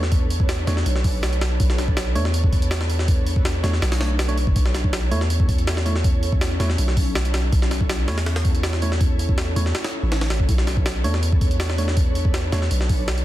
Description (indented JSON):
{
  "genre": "drum and bass, jungle",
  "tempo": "162 BPM",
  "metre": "4/4",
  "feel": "straight",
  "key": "B minor",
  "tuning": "A4 = 440 Hz",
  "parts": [
    { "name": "tine electric piano", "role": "stabs", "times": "0.0-12.6 s", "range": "A3 to C#5", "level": "-32 LUFS", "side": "right 2 dB", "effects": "vintage 12-bit sampler grit, dub echo" },
    { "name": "long sustained 808-style bass", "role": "bass", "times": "0.0-13.2 s", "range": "F#1 to E2", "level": "-22 LUFS", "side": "equal", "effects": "none" },
    { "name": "jungle sampler-style drum kit", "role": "drums", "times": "0.0-13.2 s", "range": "hi-hat, kick drum, snare drum", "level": "-21 LUFS", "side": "equal", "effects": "none" }
  ],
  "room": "little or no reverb",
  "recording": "dense, heavily limited modern master, vinyl crackle",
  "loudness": "-18 LUFS",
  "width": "side -14 dB against mid",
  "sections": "0.0-13.2 A section",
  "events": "none",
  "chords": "0.0 Bm9; 4.6 A/B; 10.5 Bm9"
}